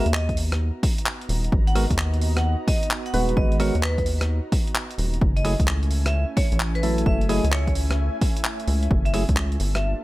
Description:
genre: UK garage, two-step garage.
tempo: 130 BPM.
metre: 4/4.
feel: swing 66% on 16ths.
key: unclear.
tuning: A4 = 443 Hz.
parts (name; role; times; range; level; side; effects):
vibraphone with hard mallets; melody; 0.0-9.9 s; B4 to F#5; -31 LUFS; equal; digital delay.
warm analog pad; sustained chords; 0.0-10.0 s; A3 to A#5; -35 LUFS; right 2 dB; chorus, sidechain pumping.
percussive organ stab; stabs; 0.0-9.2 s; F#3 to B4; -27 LUFS; equal; chorus, tape echo.
rubbery square bass; bass; 0.1-9.9 s; D#1 to D#2; -22 LUFS; equal; sidechain pumping.
breakbeat sampler-style drum kit; drums; 0.1-9.8 s; handclaps, hi-hat, rim click; -29 LUFS; equal; none.
electronic kick drum; drums; 0.3-9.4 s; none; -23 LUFS; equal; none.
warbly tape-like pad; texture; 1.3-10.0 s; G4 to E5; -40 LUFS; left 1 dB; chorus, built-in reverb, sidechain pumping.
room: digital ambience.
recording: none.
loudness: -20 LUFS.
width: side -18 dB against mid.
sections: 0.0-10.0 A section.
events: none.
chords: 0.0 G#m9; 5.2 F#m9.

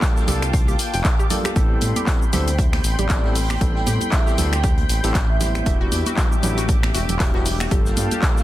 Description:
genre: deep house.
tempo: 117 BPM.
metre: 4/4.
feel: swing 57% on 16ths.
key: A minor.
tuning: A4 = 440 Hz.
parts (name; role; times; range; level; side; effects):
warm analog pad; sustained chords; 0.0-8.4 s; G3 to D6; -31 LUFS; right 1 dB; chorus, vintage 12-bit sampler grit, sidechain pumping.
overdriven tine electric piano; stabs; 0.0-8.4 s; F#3 to C5; -28 LUFS; left 1 dB; sidechain pumping, tape echo.
deep house drum kit; drums; 0.0-8.4 s; finger snaps, handclaps, hi-hat, shaker; -26 LUFS; left 1 dB; none.
electronic kick drum; drums; 0.0-8.3 s; none; -20 LUFS; equal; none.
vintage drum kit; drums; 0.0-8.4 s; hi-hat, snare drum; -37 LUFS; right 3 dB; sidechain pumping on hats, high-pass filter on hats, high-pass filter on snare, high-pass filter on room.
dark studio string section; texture; 0.0-8.4 s; Bb3 to G5; -35 LUFS; left 3 dB; none.
warm studio violin section; texture; 0.0-8.4 s; D6 to G6; -36 LUFS; left 3 dB; sidechain pumping.
bongos and congas; percussion; 0.2-8.4 s; none; -30 LUFS; right 3 dB; none.
analog pluck; arpeggios; 0.3-8.2 s; F#4 to G5; -32 LUFS; equal; chorus, sidechain pumping, tape echo.
smooth synth bass; bass; 0.3-8.1 s; E1 to A2; -23 LUFS; equal; sidechain pumping.
vibraphone with soft mallets; melody; 2.3-5.7 s; C5 to G5; -31 LUFS; right 5 dB; tape echo.
room: small room ambience.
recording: dense, heavily limited modern master.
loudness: -17 LUFS.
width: side -14 dB against mid.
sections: 0.0-8.4 A section.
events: none.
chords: 0.0 Gm9; 1.6 Am9; 5.7 Em9; 7.7 Gm9.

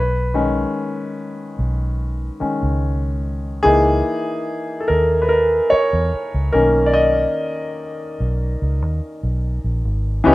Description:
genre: lush 1970s-style soul.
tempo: 73 BPM.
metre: 4/4.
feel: straight.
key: unclear.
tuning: A4 = 440 Hz.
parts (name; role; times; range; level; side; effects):
clear concert grand piano; accompaniment; 0.0-10.3 s; D#3 to D#5; -18 LUFS; left 1 dB; none.
vintage muted fingered electric bass; bass; 0.0-10.3 s; G#1 to E2; -20 LUFS; equal; none.
room: light reverb, studio reverb.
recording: rough home demo mix.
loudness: -17 LUFS.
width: side -18 dB against mid.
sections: 0.0-10.3 A section.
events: grand piano solo 0.0-10.3.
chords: 0.0 B6; 3.7 C#m69; 6.5 Bmaj7.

